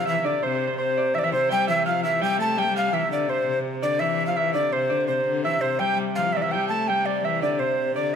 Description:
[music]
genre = medieval dance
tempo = 167 BPM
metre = 3/4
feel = straight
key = C major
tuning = A4 = 441 Hz
[part]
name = breathy tenor recorder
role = melody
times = 0.0-8.2 s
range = C5 to A5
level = -23 LUFS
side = equal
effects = none
[part]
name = clear viola da gamba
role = second line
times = 0.0-8.2 s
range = C3 to A3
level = -29 LUFS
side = left 7 dB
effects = none
[part]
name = concert harp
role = second line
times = 0.0-8.2 s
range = C5 to A5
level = -29 LUFS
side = right 4 dB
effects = none
[part]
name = bright hurdy-gurdy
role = drone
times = 0.0-8.2 s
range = C3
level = -34 LUFS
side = right 2 dB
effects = none
[sound]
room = moderate scoring stage reverb, RT60 1.5 s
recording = close, detailed microphones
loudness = -21 LUFS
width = side -7 dB against mid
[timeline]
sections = 0.0-8.0 A section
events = none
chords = none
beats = 0.07 | 0.42 0.78 1.14 | 1.50 1.86 2.22 | 2.58 2.94 3.29 | 3.65 4.01 4.37 | 4.73 5.09 5.45 | 5.81 6.17 6.52 | 6.88 7.24 7.60 | 7.96

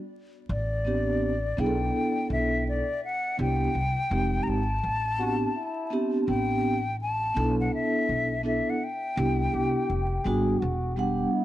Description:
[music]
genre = hip hop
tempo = 83 BPM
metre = 4/4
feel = swing 63% on 16ths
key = A dorian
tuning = A4 = 437 Hz
[part]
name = mellow hollow silver concert flute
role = melody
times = 0.5-10.3 s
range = D5 to Bb5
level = -30 LUFS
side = left 2 dB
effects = analog delay
[part]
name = upright bass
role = bass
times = 0.5-11.2 s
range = E1 to C2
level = -30 LUFS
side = equal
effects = tube saturation
[part]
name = vibraphone with soft mallets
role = accompaniment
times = 0.8-11.4 s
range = G3 to F#5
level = -28 LUFS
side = right 1 dB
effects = none
[part]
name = breathy trombone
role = second line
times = 5.2-11.4 s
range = E4 to Ab4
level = -34 LUFS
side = left 2 dB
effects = none
[sound]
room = studio ambience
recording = dry, gritty hardware recording, vinyl crackle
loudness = -24 LUFS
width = side -14 dB against mid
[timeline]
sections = 0.0-6.3 A section; 6.3-11.4 B section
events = none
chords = 0.5 Am11; 1.6 G69/B; 3.4 Cmaj9; 4.1 Fm9; 4.8 Am11; 7.4 G69/B (rootless); 9.2 Cmaj9; 9.9 Fmadd9; 10.6 Em9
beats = | 0.49 1.22 1.94 2.66 | 3.38 4.11 4.83 5.55 | 6.28 7.00 7.72 8.45 | 9.17 9.89 10.61 11.34

